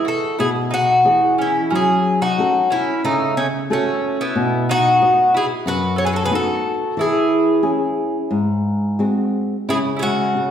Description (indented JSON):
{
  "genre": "fado-style ballad",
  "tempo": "90 BPM",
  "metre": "4/4",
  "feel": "rubato",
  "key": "E major",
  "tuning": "A4 = 438 Hz",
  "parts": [
    { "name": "Irish bouzouki", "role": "melody", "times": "0.0-10.5 s", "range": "C#4 to C#5", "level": "-18 LUFS", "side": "left 2 dB", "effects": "none" },
    { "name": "mandolin", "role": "second line", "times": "0.0-10.5 s", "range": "A3 to A4", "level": "-24 LUFS", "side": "right 3 dB", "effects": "none" },
    { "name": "flamenco guitar", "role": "accompaniment", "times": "0.0-10.5 s", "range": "F#2 to D#5", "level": "-20 LUFS", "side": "equal", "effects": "none" }
  ],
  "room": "wet recital hall reverb, RT60 1.4 s",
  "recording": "recorded in a church or concert hall",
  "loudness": "-16 LUFS",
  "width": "side -9 dB against mid",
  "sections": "0.0-9.7 A section",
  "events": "none",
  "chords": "0.0 Emaj7; 1.7 F#m; 4.4 B; 7.0 E6; 8.3 G#7; 9.7 C#5"
}